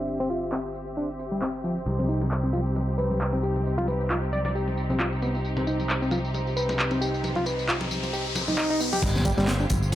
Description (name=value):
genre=breakbeat, breaks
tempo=134 BPM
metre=4/4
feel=swing 56% on 16ths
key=unclear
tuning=A4 = 440 Hz
part: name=muted studio string section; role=sustained chords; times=0.0-9.9 s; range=C3 to E5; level=-31 LUFS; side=equal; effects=sidechain pumping
part: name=barky reed electric piano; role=riff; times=0.0-9.9 s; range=F3 to B4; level=-29 LUFS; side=equal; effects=overdrive, tube saturation, vintage 12-bit sampler grit, low-pass filter, digital delay
part: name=modern bright picked electric bass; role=bass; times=0.0-9.9 s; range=G1 to C2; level=-29 LUFS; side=equal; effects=low-pass filter
part: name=electronic tambourine and handclaps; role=drums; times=0.1-9.9 s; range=none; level=-31 LUFS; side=equal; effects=low-pass filter on perc, low-pass filter on snare
part: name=congas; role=percussion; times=1.9-9.8 s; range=none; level=-35 LUFS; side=left 1 dB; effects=none
part: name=plucky unison lead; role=melody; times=4.3-4.5 s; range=D5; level=-34 LUFS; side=equal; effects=AM radio sound, digital delay
part: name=riser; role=sound effects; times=7.0-9.0 s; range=none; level=-33 LUFS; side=left 3 dB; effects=none
part: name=crunchy breakbeat drum kit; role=drums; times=9.0-9.9 s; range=crash cymbal, hi-hat, kick drum, snare drum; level=-26 LUFS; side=equal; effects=none
room=light reverb, small room reverb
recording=low-pass filter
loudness=-24 LUFS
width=side -13 dB against mid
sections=0.0-9.0 A section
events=filter sweep 0.0-9.0; riser 7.0-9.0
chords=0.0 G7sus4; 1.9 Cm; 9.0 G7sus4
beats=| 0.07 0.52 0.97 1.42 | 1.86 2.31 2.76 3.21 | 3.65 4.10 4.55 5.00 | 5.45 5.89 6.34 6.79 | 7.24 7.68 8.13 8.58 | 9.03 9.48 9.92